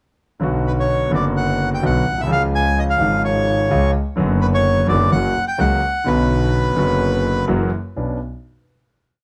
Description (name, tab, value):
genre	tango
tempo	127 BPM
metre	4/4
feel	rubato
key	B minor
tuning	A4 = 441 Hz
part	clear concert grand piano	accompaniment	0.4-8.2 s	F#1 to F#4	-22 LUFS	equal	none
part	clear double bass	bass	0.4-8.2 s	F#1 to C#2	-23 LUFS	equal	none
part	bandoneon	melody	0.7-7.5 s	B4 to G#5	-22 LUFS	equal	none
room	moderate studio ambience, RT60 0.5 s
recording	none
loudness	-18 LUFS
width	mono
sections	0.4-8.0 A section; 8.0-9.2 final chord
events	none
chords	0.4 Bm; 2.3 C#; 4.2 Bm/F#; 5.1 F#; 6.1 Bmadd9; 7.5 F#7; 8.0 Bmadd9